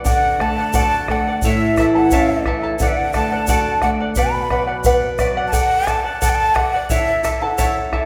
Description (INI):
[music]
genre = andean folk, Andean ensemble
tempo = 88 BPM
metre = 2/4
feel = straight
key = unclear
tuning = A4 = 440 Hz
[part]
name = charango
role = accompaniment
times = 0.0-8.1 s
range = E4 to A5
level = -23 LUFS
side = equal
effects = none
[part]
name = flamenco guitar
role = accompaniment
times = 0.0-5.5 s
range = A2 to F#4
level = -23 LUFS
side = equal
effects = none
[part]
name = breathy large quena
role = melody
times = 0.1-7.9 s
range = E5 to B5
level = -22 LUFS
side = equal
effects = none
[part]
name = bombo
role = percussion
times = 0.1-8.1 s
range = none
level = -25 LUFS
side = equal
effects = none
[part]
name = tube shaker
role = percussion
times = 0.1-7.7 s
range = none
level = -33 LUFS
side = equal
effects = none
[sound]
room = wet recital hall reverb, RT60 1.5 s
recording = recorded in a church or concert hall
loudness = -17 LUFS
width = mono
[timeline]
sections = 0.0-5.5 A section; 5.5-8.1 A section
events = none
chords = 0.1 D; 1.4 A; 2.8 D; 4.2 Bm; 5.5 D; 6.9 A